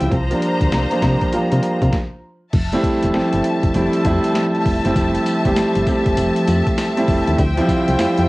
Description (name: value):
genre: R&B, new jack swing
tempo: 99 BPM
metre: 4/4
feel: swing 63% on 16ths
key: F major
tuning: A4 = 440 Hz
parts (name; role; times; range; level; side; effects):
- warm concert grand piano; accompaniment; 0.0-8.3 s; F3 to G4; -18 LUFS; right 1 dB; cassette tape
- rich studio string section; sustained chords; 0.0-8.3 s; F3 to Bb5; -23 LUFS; left 1 dB; cassette tape
- solid FM bass; bass; 0.0-8.3 s; E1 to C3; -20 LUFS; equal; none
- boom bap sampler-style drum kit; drums; 0.0-8.3 s; crash cymbal, hi-hat, kick drum, snare drum, tambourine; -22 LUFS; equal; cassette tape
room: moderate studio reverb, RT60 0.6 s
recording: home recording on cassette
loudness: -15 LUFS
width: side -20 dB against mid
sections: 0.0-2.5 A section; 2.5-8.3 B section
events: stop 1.9-2.5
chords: 0.1 C7sus4; 2.5 Fmaj7; 7.4 Dm11